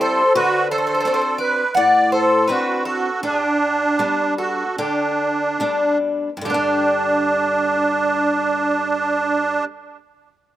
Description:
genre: greek folk, Greek bouzouki band.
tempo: 69-86 BPM.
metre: 4/4.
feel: straight.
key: G major.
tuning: A4 = 440 Hz.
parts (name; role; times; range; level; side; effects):
Greek bouzouki; melody; 0.0-9.7 s; G4 to F#5; -20 LUFS; left 2 dB; slapback echo.
musette accordion; second line; 0.0-9.6 s; D4 to D5; -19 LUFS; right 3 dB; slapback echo.
picked old ladder-braced acoustic guitar; accompaniment; 0.0-9.7 s; G2 to F#4; -24 LUFS; left 3 dB; slapback echo.
room: little or no reverb.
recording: recorded outdoors, with no room sound.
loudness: -16 LUFS.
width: side -13 dB against mid.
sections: 0.0-6.5 A section; 6.5-10.0 B section.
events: slowing down 0.4-6.5.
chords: 0.4 D7; 3.2 G; 6.5 G5.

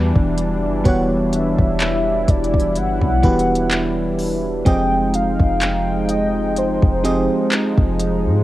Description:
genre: contemporary R&B.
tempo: 63 BPM.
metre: 4/4.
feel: swing 54% on 16ths.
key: unclear.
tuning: A4 = 440 Hz.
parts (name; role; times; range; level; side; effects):
warm velvety synth lead; melody; 0.0-8.0 s; B4 to G5; -23 LUFS; equal; chorus, cassette tape, analog delay.
FM electric piano; accompaniment; 0.0-8.4 s; E3 to Eb5; -22 LUFS; right 2 dB; chorus, cassette tape.
lush unison pad; sustained chords; 0.0-8.4 s; E3 to G5; -22 LUFS; left 1 dB; chorus, cassette tape.
clean 808-style bass; bass; 0.0-8.4 s; E1 to Ab2; -22 LUFS; equal; none.
smooth R&B drum kit; drums; 0.2-8.2 s; handclaps, hi-hat, kick drum; -19 LUFS; equal; overdrive, cassette tape.
room: little or no reverb.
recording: home recording on cassette.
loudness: -15 LUFS.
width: side -15 dB against mid.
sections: 0.0-8.4 A section.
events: none.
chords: 0.0 Em9; 4.7 Fm9.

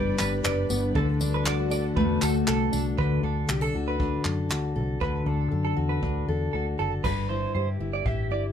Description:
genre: acoustic pop.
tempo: 118 BPM.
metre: 4/4.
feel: straight.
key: unclear.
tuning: A4 = 439 Hz.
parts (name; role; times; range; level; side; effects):
fingerpicked steel-string acoustic guitar; accompaniment; 0.0-8.5 s; G2 to B4; -27 LUFS; left 3 dB; none.
ethereal airy pad; sustained chords; 0.0-3.0 s; D3 to B4; -35 LUFS; right 1 dB; ensemble chorus, built-in reverb.
direct-recorded clean electric guitar; arpeggios; 0.0-8.4 s; A4 to E5; -31 LUFS; right 6 dB; lush chorus.
vintage muted fingered electric bass; bass; 0.0-8.5 s; F#1 to G2; -29 LUFS; equal; none.
jazz brush drum kit; drums; 0.2-8.2 s; crash cymbal, handclaps, kick drum, tambourine; -31 LUFS; equal; none.
room: light reverb.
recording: close, detailed microphones.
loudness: -24 LUFS.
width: side -8 dB against mid.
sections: 0.0-3.0 A section; 3.0-7.0 B section; 7.0-8.5 C section.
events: none.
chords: 0.0 G; 1.0 D; 7.0 C.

